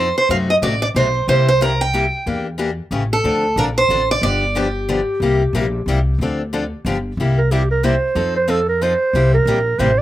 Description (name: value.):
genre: acoustic string swing (jazz manouche).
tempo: 183 BPM.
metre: 3/4.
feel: swing 59% on 8ths.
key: C mixolydian.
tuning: A4 = 440 Hz.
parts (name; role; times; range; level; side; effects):
picked steel-string acoustic guitar; melody; 0.0-6.8 s; G4 to G5; -17 LUFS; right 1 dB; slapback echo.
picked steel-string acoustic guitar; accompaniment; 0.0-9.9 s; C3 to A4; -22 LUFS; left 3 dB; none.
upright bass; bass; 0.0-10.0 s; G1 to F#2; -20 LUFS; left 1 dB; none.
growling clarinet; second line; 7.4-10.0 s; G4 to D5; -17 LUFS; right 4 dB; none.
room: little or no reverb.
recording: recorded outdoors, with no room sound.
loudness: -15 LUFS.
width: side -14 dB against mid.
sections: 0.0-7.2 A section; 7.2-10.0 B section.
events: clarinet solo 7.2-10.0.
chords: 0.3 F#dim7; 1.3 C7; 2.3 Em7b5; 2.9 A7; 3.2 Dm7; 4.2 G7; 5.2 C7; 6.2 Dm7; 6.8 G7; 7.2 C7; 8.2 F7; 9.1 C7.